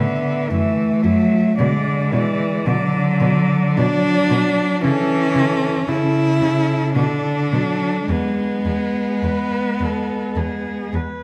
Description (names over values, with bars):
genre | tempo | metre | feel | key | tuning
classical, lyrical piece for cello ensemble | 52-58 BPM | 3/4 | rubato | unclear | A4 = 436 Hz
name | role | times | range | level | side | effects
rich cello | melody | 0.0-11.2 s | G#4 to E5 | -29 LUFS | equal | none
rich cello | second line | 0.0-11.0 s | F#3 to E4 | -22 LUFS | equal | none
rich cello | accompaniment | 0.0-10.9 s | C#3 to G#3 | -23 LUFS | equal | none
rich cello | bass | 0.0-11.0 s | E2 to C#3 | -27 LUFS | equal | none
room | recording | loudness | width
wet concert hall reverb, RT60 1.8 s | none | -19 LUFS | mono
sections
0.0-11.2 A section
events
none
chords
0.0 N.C.; 0.5 F#m7; 1.6 Bm; 4.8 A/C#; 7.0 Bm7 (rootless); 8.1 E